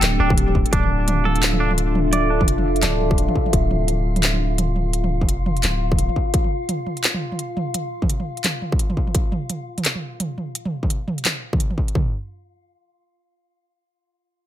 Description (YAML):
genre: half-time drum and bass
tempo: 171 BPM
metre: 4/4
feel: swing 59% on 16ths, half-time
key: D minor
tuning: A4 = 439 Hz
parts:
  - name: dark analog pad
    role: sustained chords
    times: 0.0-6.3 s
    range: D4 to G5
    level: -26 LUFS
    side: right 1 dB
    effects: chorus, phaser, sidechain pumping
  - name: long sustained 808-style bass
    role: bass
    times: 0.0-6.1 s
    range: D1 to F1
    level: -21 LUFS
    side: equal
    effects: none
  - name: industrial drum kit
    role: drums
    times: 0.0-11.9 s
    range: handclaps, hi-hat, toms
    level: -24 LUFS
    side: right 1 dB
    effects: none
  - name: metallic inharmonic drone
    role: texture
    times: 0.0-9.2 s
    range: A3 to F4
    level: -29 LUFS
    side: left 3 dB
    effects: chorus, built-in reverb
  - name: twangy electric guitar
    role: arpeggios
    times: 0.2-3.5 s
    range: D4 to D5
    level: -25 LUFS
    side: right 3 dB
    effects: low-pass filter, tape echo
  - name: industrial drum kit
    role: drums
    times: 0.3-12.0 s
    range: kick drum, toms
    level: -20 LUFS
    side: equal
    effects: distortion
room: little or no reverb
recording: none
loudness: -18 LUFS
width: side -11 dB against mid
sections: 0.7-12.0 A section; 12.0-14.5 B section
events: filter sweep on clean electric guitar 0.7-3.5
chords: 0.0 D5; 0.7 Dm; 12.0 N.C.